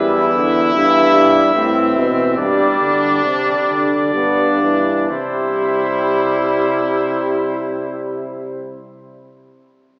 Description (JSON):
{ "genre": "classical, imitative canzona for brass ensemble", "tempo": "60-78 BPM", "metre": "3/4", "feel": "straight", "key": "C major", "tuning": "A4 = 440 Hz", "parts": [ { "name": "warm trumpet", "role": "melody", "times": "0.0-8.8 s", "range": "C5 to E5", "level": "-22 LUFS", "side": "equal", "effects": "none" }, { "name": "clear trumpet", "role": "second line", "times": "0.0-8.8 s", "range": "C4 to E4", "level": "-23 LUFS", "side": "equal", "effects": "none" }, { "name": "clear trombone", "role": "accompaniment", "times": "0.0-8.8 s", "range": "D3 to B3", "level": "-22 LUFS", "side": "equal", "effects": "none" }, { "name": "mellow bass trombone", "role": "bass", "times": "0.0-8.8 s", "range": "E2 to D3", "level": "-22 LUFS", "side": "equal", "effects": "none" } ], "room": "wet church reverb, RT60 2.8 s", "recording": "heard from further back in the room, small speaker sound", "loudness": "-16 LUFS", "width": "mono", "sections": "0.0-5.1 A section; 5.1-8.1 B section", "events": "slowing down 0.0-5.1", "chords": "0.0 Em; 1.6 Am; 2.4 Gsus4; 4.2 G; 5.1 C", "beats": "0.75 1.55 | 2.39 3.25 4.15 | 5.11 6.10 7.09" }